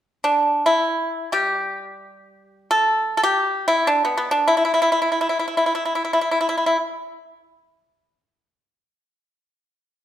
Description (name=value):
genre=chinese traditional, Chinese solo plucked strings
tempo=free time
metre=none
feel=none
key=unclear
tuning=A4 = 441 Hz
part: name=pipa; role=solo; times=0.2-6.8 s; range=G3 to A4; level=-18 LUFS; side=equal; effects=none
room=wet recital hall reverb, RT60 1.3 s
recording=recorded in a church or concert hall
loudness=-18 LUFS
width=side -11 dB against mid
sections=0.0-10.0 A section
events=none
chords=none